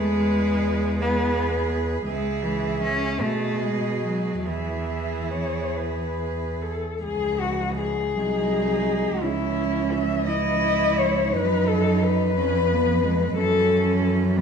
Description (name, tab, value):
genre	classical, lyrical piece for cello ensemble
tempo	45-61 BPM (dotted quarters)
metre	6/8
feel	rubato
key	E major, C# minor from 7.0 s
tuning	A4 = 438 Hz
part	warm cello	melody	0.0-14.0 s	E4 to E5	-25 LUFS	left 5 dB	none
part	rich cello	second line	0.0-14.4 s	Ab3 to G#4	-28 LUFS	right 9 dB	none
part	rich cello	accompaniment	0.0-14.4 s	E3 to C#4	-28 LUFS	left 2 dB	none
part	warm cello	bass	0.0-14.4 s	B#1 to B2	-26 LUFS	right 2 dB	none
room	wet recital hall reverb, RT60 1.5 s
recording	dark, warm production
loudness	-21 LUFS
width	side -6 dB against mid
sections	0.0-7.0 A section; 7.0-14.4 B section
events	none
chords	0.0 E; 2.1 C#m; 3.2 B6; 4.5 E; 7.0 C#m; 8.2 G#7/B#; 9.2 C#m; 11.3 Badd11/F#; 12.4 Fdim; 13.4 F#m7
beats	1.02 | 2.08 3.22 | 4.47 5.77 | 7.03 8.15 | 9.21 10.27 | 11.34 12.37 | 13.37 14.37